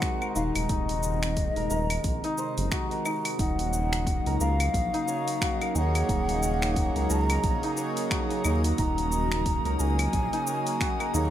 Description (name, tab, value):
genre	organic downtempo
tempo	89 BPM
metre	4/4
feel	swing 58% on 16ths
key	Eb dorian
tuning	A4 = 441 Hz
part	mellow hollow bansuri	melody	0.0-11.3 s	Eb5 to Bb5	-32 LUFS	equal	tape echo
part	warm analog pad	sustained chords	0.0-11.3 s	C3 to Eb4	-33 LUFS	equal	chorus, sidechain pumping
part	santur	arpeggios	0.0-11.3 s	Eb4 to Db5	-33 LUFS	left 1 dB	ping-pong delay
part	deep house drum kit	drums	0.0-11.3 s	claves, finger snaps, hi-hat, shaker	-34 LUFS	equal	overdrive, small room reverb
part	electronic kick drum	drums	0.0-11.0 s	none	-30 LUFS	equal	small room reverb
part	round analog bass	bass	0.4-11.3 s	Eb1 to Eb2	-28 LUFS	equal	sidechain pumping
part	drifting glass-harmonics texture	texture	3.9-11.3 s	Gb4 to Eb5	-42 LUFS	equal	chorus, built-in reverb
part	pedal harmonium	accompaniment	5.7-11.3 s	Bb3 to Db5	-33 LUFS	right 3 dB	sidechain pumping, ping-pong delay
room	light reverb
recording	none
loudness	-24 LUFS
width	side -11 dB against mid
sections	0.0-3.4 A section; 3.4-11.3 B section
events	none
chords	0.0 Ab/Eb; 3.4 Ebm7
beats	0.02 | 0.69 1.37 2.04 2.72 | 3.39 4.07 4.74 5.41 | 6.09 6.76 7.44 8.11 | 8.79 9.46 10.13 10.81